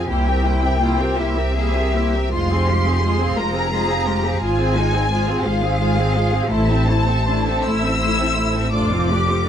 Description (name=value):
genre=classical, slow romantic movement for string orchestra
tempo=50-59 BPM (dotted quarters)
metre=6/8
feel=rubato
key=F minor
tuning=A4 = 440 Hz
part: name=clear symphonic violin section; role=melody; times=0.0-9.5 s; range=E5 to E6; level=-23 LUFS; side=left 2 dB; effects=none
part: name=bright symphonic violin section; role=second line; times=0.0-9.5 s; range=F4 to F5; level=-29 LUFS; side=equal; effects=none
part: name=clear symphonic viola section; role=accompaniment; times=0.0-9.5 s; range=Ab3 to Ab4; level=-22 LUFS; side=equal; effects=none
part: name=rich symphonic cello section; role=bass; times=0.0-9.5 s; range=C4 to Bb4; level=-28 LUFS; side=left 1 dB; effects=none
part: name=rich symphonic double bass section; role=bass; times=0.1-9.5 s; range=F1 to C2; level=-20 LUFS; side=right 1 dB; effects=none
room=light reverb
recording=dark, warm production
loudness=-16 LUFS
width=side -9 dB against mid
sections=0.0-9.5 A section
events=none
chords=0.1 C7; 2.3 Fm; 4.4 Fm/Ab; 6.5 Am; 8.7 Dm7/F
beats=| 0.08 1.17 | 2.32 3.37 | 4.41 5.45 | 6.51 7.66 | 8.73